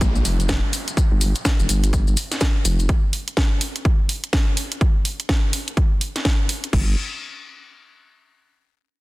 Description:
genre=bass house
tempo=125 BPM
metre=4/4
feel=swing 61% on 16ths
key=G minor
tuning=A4 = 442 Hz
part: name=vowel-sweep wobble bass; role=bass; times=0.0-2.9, 6.7-7.0 s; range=F1 to Bb1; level=-20 LUFS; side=equal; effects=chorus, overdrive, sidechain pumping
part: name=electronic kick drum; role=drums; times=0.0-6.8 s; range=none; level=-19 LUFS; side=equal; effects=overdrive
part: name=house drum kit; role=drums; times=0.0-6.8 s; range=crash cymbal, hi-hat, snare drum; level=-25 LUFS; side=equal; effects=overdrive
part: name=maracas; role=percussion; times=0.0-2.9 s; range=none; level=-29 LUFS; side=left 5 dB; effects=none
part: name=downlifter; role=sound effects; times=0.0-2.9 s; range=none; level=-35 LUFS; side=left 1 dB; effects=none
room=little or no reverb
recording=dense, heavily limited modern master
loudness=-18 LUFS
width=side -20 dB against mid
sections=0.0-6.7 A section; 6.7-8.7 B section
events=none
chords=none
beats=0.01 0.49 | 0.97 1.45 1.93 2.41 | 2.89 3.37 3.85 4.33 | 4.81 5.29 5.77 6.25 | 6.73

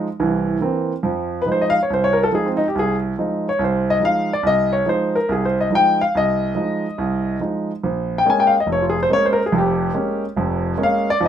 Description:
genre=solo jazz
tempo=142 BPM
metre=4/4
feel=swing 67% on 8ths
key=F minor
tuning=A4 = 439 Hz
part: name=warm grand piano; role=solo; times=0.0-11.3 s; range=F1 to Ab5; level=-17 LUFS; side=equal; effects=none
room=light reverb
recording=minimal, uncompressed stereo recording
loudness=-17 LUFS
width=side -9 dB against mid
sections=0.0-1.0 A section; 1.0-11.3 A section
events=grand piano solo 0.0-1.0, 1.0-11.3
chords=0.2 C7; 1.0 Fm7; 7.8 Bbm7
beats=0.20 0.62 | 1.04 1.47 1.89 2.32 | 2.74 3.16 3.59 4.01 | 4.44 4.86 5.28 5.71 | 6.13 6.55 6.98 7.40 | 7.82 8.25 8.67 9.09 | 9.51 9.94 10.36 10.78 | 11.20

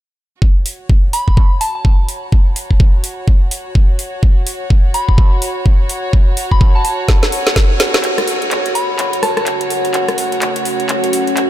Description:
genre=bass house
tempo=126 BPM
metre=4/4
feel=swing 60% on 16ths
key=F# minor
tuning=A4 = 440 Hz
part: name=electronic kick drum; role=drums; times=0.4-7.7 s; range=none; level=-10 LUFS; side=equal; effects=none
part: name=warm chamber string section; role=texture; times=0.4-11.5 s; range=F#4 to C#5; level=-22 LUFS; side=equal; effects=sidechain pumping
part: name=garage drum kit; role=drums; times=0.7-11.5 s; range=handclaps, hi-hat, rim click, snare drum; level=-17 LUFS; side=equal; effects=none
part: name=soft synth bell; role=melody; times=1.1-1.8, 4.9-9.4 s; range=A5 to B5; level=-23 LUFS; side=left 1 dB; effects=chorus, ping-pong delay
part: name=deep dark ambient pad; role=sustained chords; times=9.2-11.5 s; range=C#4 to F#5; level=-20 LUFS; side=equal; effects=chorus, built-in reverb, sidechain pumping
room=light reverb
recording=none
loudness=-12 LUFS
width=side -13 dB against mid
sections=0.4-8.0 A section; 8.0-11.5 B section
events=fade-in on string section 0.4-8.0; drum fill 7.1-8.0, 8.0-11.5; build-up 8.0-11.5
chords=0.4 F#5; 8.0 F#m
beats=| 0.42 0.90 1.37 1.85 | 2.32 2.80 3.28 3.75 | 4.23 4.70 5.18 5.66 | 6.13 6.61 7.08 7.56 | 8.04 8.51 8.99 9.47 | 9.94 10.42 10.89 11.37

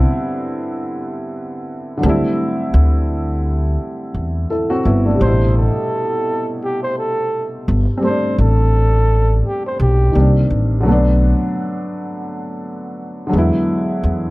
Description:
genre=lo-fi hip hop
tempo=85 BPM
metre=4/4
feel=swing 56% on 16ths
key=A dorian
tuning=A4 = 441 Hz
part: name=dark upright piano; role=accompaniment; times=0.0-14.3 s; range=B2 to A4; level=-19 LUFS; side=equal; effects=cassette tape, low-pass filter
part: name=upright bass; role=bass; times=0.0-14.3 s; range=G1 to E2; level=-15 LUFS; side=equal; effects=none
part: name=breathy flugelhorn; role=melody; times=5.2-10.3 s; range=G4 to C5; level=-21 LUFS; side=right 1 dB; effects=low-pass filter
room=light reverb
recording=dark, warm production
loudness=-14 LUFS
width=side -20 dB against mid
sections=0.0-5.2 A section; 5.2-14.3 B section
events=none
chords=0.0 Cmaj9; 2.0 D7sus4; 5.2 Am9; 10.2 Cm7; 10.9 Bm7; 13.3 E7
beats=0.27 0.97 1.68 | 2.38 3.09 3.80 4.50 | 5.21 5.92 6.62 7.33 | 8.03 8.74 9.44 10.15 | 10.86 11.56 12.27 12.97 | 13.68

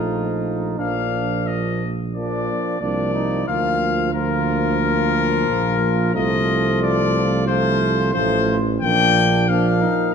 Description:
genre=classical, brass quintet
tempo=90 BPM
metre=4/4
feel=straight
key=Bb major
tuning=A4 = 440 Hz
part: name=clear trumpet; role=melody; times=0.0-10.1 s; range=F4 to G5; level=-22 LUFS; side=left 6 dB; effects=none
part: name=warm flugelhorn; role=second line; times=0.0-10.1 s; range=D4 to F4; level=-27 LUFS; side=right 4 dB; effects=none
part: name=clear trombone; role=accompaniment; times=0.0-10.1 s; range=F3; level=-27 LUFS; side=right 3 dB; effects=none
part: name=mellow French horn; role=accompaniment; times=0.0-10.1 s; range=A3 to Bb3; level=-25 LUFS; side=left 4 dB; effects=none
part: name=dark tuba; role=bass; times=0.0-9.8 s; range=A1 to D2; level=-22 LUFS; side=right 3 dB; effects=none
room=wet scoring stage reverb, RT60 1.5 s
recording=dark, warm production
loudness=-17 LUFS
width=side -6 dB against mid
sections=0.0-10.1 A section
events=none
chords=0.0 F7/Bb; 0.8 Bb; 3.5 Bb/D; 6.2 F7/C; 8.8 Bb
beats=0.10 | 0.79 1.47 2.14 2.81 | 3.48 4.14 4.80 5.47 | 6.15 6.82 7.48 8.14 | 8.82 9.48 10.14

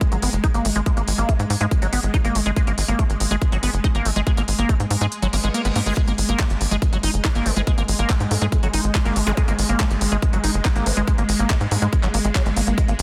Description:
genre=psychedelic trance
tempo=141 BPM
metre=4/4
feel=straight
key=G# minor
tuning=A4 = 441 Hz
part: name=swarming drone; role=sustained chords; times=0.0-13.0 s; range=G#3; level=-31 LUFS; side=equal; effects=built-in reverb, sidechain pumping
part: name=electronic kick drum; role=drums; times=0.0-12.9 s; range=none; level=-24 LUFS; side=equal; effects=none
part: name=garage drum kit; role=drums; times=0.0-13.0 s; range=handclaps, hi-hat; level=-30 LUFS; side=equal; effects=none
part: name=liquid acid bass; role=riff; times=0.1-12.9 s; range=F#3 to D#4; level=-28 LUFS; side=equal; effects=chorus, sidechain pumping, dub echo
part: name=tight sequencer bass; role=bass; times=0.1-13.0 s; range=F#1 to G#2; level=-24 LUFS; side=equal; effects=none
part: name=reverse cymbal and zap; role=sound effects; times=5.4-6.0, 9.3-9.4 s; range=none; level=-36 LUFS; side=equal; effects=none
part: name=vowel-sweep wobble bass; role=second line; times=7.5-11.9 s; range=G#3 to B3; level=-38 LUFS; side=equal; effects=lush chorus, cassette tape, sidechain pumping, high-pass filter, tape echo
room=light reverb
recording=dense, heavily limited modern master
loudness=-20 LUFS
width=mono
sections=0.0-13.0 A section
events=kick drops out 5.1-6.0; reverse cymbal 5.4-6.0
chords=0.0 G#5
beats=0.01 0.44 | 0.86 1.29 1.71 2.14 | 2.56 2.99 3.42 3.84 | 4.27 4.69 5.12 5.54 | 5.97 6.39 6.82 7.25 | 7.67 8.10 8.52 8.95 | 9.37 9.80 10.22 10.65 | 11.08 11.50 11.93 12.35 | 12.78

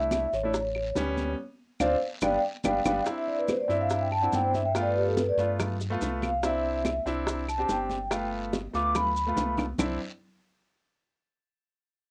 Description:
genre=Afro-Cuban jazz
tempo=143 BPM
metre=4/4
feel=straight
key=C major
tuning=A4 = 440 Hz
part: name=vibraphone with soft mallets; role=melody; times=0.0-9.5 s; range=G4 to D6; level=-30 LUFS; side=equal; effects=cassette tape
part: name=clear concert grand piano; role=accompaniment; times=0.0-10.0 s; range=G3 to G4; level=-35 LUFS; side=equal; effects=cassette tape
part: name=rubbery square bass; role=bass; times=0.0-10.0 s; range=G1 to G2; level=-36 LUFS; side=equal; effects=none
part: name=bongos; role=percussion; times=0.1-9.9 s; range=none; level=-36 LUFS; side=equal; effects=none
part: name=claves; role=percussion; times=0.1-9.9 s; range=none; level=-41 LUFS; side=equal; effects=none
part: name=congas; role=percussion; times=0.1-9.9 s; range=none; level=-40 LUFS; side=equal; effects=none
part: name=guiro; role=percussion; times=0.1-9.9 s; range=none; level=-51 LUFS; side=equal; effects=none
part: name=maracas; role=percussion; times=0.1-9.9 s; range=none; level=-45 LUFS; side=equal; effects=none
room=wet booth ambience, RT60 0.3 s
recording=home recording on cassette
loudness=-28 LUFS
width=mono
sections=0.0-3.1 A section; 3.1-9.8 B section; 9.8-11.5 C section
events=band accent 1.4-3.1; drum fill 2.6-3.1, 8.9-9.8; vibraphone solo 3.1-9.8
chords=0.0 C69; 0.5 A7; 1.4 Dm7; 2.2 G7; 3.1 Cadd9; 4.7 G7; 6.4 Cadd9; 8.1 G7; 9.8 Cadd9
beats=0.12 0.54 0.96 | 1.38 1.80 2.23 2.65 | 3.07 3.49 3.91 4.33 | 4.75 5.17 5.59 6.01 | 6.43 6.85 7.27 7.69 | 8.11 8.53 8.95 9.37 | 9.79

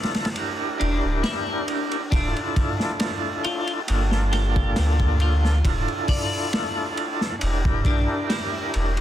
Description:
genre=trip hop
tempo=68 BPM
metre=4/4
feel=swing 53% on 16ths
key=D minor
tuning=A4 = 440 Hz
part: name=tonewheel organ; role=accompaniment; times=0.0-9.0 s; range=Bb3 to Bb4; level=-26 LUFS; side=equal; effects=overdrive, slow rotary speaker, tremolo, tape echo
part: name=clean electric guitar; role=arpeggios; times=0.0-8.7 s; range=D4 to D5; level=-32 LUFS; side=left 3 dB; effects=lush chorus, tape echo
part: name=crunchy breakbeat drum kit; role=drums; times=0.0-9.0 s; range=hi-hat, kick drum, ride cymbal, snare drum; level=-26 LUFS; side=equal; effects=none
part: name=swell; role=sound effects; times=0.8-2.1 s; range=none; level=-34 LUFS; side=equal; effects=none
part: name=warm sub bass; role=bass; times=0.8-9.0 s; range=D1 to D2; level=-22 LUFS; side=equal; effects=tube saturation
room=small room ambience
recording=dense, heavily limited modern master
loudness=-21 LUFS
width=side -12 dB against mid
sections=0.0-9.0 A section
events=kick drops out 0.4-2.1; swell 0.8-2.1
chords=0.4 Em7b5; 2.1 Dmadd9; 3.9 Gm7; 5.7 Dmadd9; 7.4 Em7b5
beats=0.36 1.24 | 2.12 3.01 3.89 4.77 | 5.65 6.54 7.42 8.30

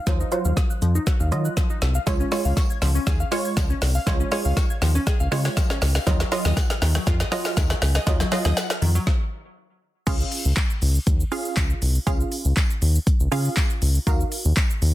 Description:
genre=dance-pop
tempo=120 BPM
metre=4/4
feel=straight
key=Db major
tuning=A4 = 439 Hz
part: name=glassy wavetable pluck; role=arpeggios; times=0.0-9.0 s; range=Eb3 to Ab6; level=-31 LUFS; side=left 3 dB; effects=chorus, sidechain pumping, low-pass filter, tape echo
part: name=wide unison pluck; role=accompaniment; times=0.1-14.8 s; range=Gb3 to F5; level=-28 LUFS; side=right 3 dB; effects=sidechain pumping, low-pass filter
part: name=round analog bass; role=bass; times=0.1-14.9 s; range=C2 to Eb3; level=-21 LUFS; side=equal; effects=sidechain pumping
part: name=deep house drum kit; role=drums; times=0.1-14.9 s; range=crash cymbal, handclaps, hi-hat, kick drum, shaker, snare drum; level=-23 LUFS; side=equal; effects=none
part: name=tambourine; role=percussion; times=2.1-14.7 s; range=none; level=-43 LUFS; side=left 7 dB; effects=none
room=little or no reverb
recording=dense, heavily limited modern master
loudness=-20 LUFS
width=side -15 dB against mid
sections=0.0-10.1 A section; 10.1-14.9 B section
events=build-up 0.0-10.1; drum fill 0.0-9.1; filter sweep 0.0-10.1; stop 9.1-10.1; drop 10.1-14.9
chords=0.0 Ebmadd9; 2.1 Db; 6.1 Ebmadd9; 10.1 Db; 14.1 Ebmadd9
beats=| 0.07 0.57 1.07 1.57 | 2.07 2.57 3.07 3.57 | 4.07 4.57 5.07 5.57 | 6.07 6.57 7.07 7.57 | 8.07 8.57 9.07 9.57 | 10.07 10.57 11.07 11.57 | 12.07 12.57 13.07 13.57 | 14.07 14.57

